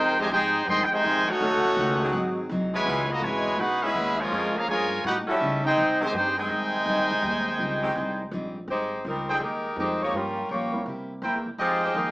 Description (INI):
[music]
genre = jazz, big band swing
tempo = 165 BPM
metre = 4/4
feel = swing 65% on 8ths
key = Ab major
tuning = A4 = 440 Hz
[part]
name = brilliant trumpet section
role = melody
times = 0.0-8.3 s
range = Db4 to C6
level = -25 LUFS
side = equal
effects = none
[part]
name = bright trombone section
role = second line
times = 0.0-8.3 s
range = Cb3 to Bb4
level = -27 LUFS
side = equal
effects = none
[part]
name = picked steel-string acoustic guitar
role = accompaniment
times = 0.0-12.1 s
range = G2 to G4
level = -34 LUFS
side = equal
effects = none
[part]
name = upright bass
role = bass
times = 0.0-12.1 s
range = Ab1 to C#3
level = -35 LUFS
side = equal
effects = none
[part]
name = edgy saxophone section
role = sustained chords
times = 0.2-7.9 s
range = Eb3 to A4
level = -32 LUFS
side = equal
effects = none
[part]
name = bright saxophone section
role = melody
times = 8.7-12.1 s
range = Eb3 to Db5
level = -27 LUFS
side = equal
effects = none
[part]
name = clear trumpet section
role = stabs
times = 9.3-12.1 s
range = Eb4 to G5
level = -26 LUFS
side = equal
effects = none
[part]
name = warm concert grand piano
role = accompaniment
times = 9.8-11.2 s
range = G3 to Bb4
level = -34 LUFS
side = right 1 dB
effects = none
[sound]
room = wet studio reverb, RT60 0.6 s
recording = band playing live in one room, small speaker sound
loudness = -23 LUFS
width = side -21 dB against mid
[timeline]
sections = 0.0-8.7 A section; 8.7-12.1 B section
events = none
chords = 0.0 Fm9; 1.4 Ebm7b5; 2.1 Ab7; 2.9 Dbm7; 4.3 Bbm7; 5.0 A7#11; 5.8 Abmaj7; 10.1 Gm7b5; 10.9 C7; 11.6 Fm9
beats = 0.31 0.68 1.04 | 1.41 1.77 2.13 2.50 | 2.86 3.22 3.59 3.95 | 4.32 4.68 5.04 5.41 | 5.77 6.13 6.50 6.86 | 7.22 7.59 7.95 8.31 | 8.68 9.04 9.41 9.77 | 10.13 10.50 10.86 11.23 | 11.59 11.95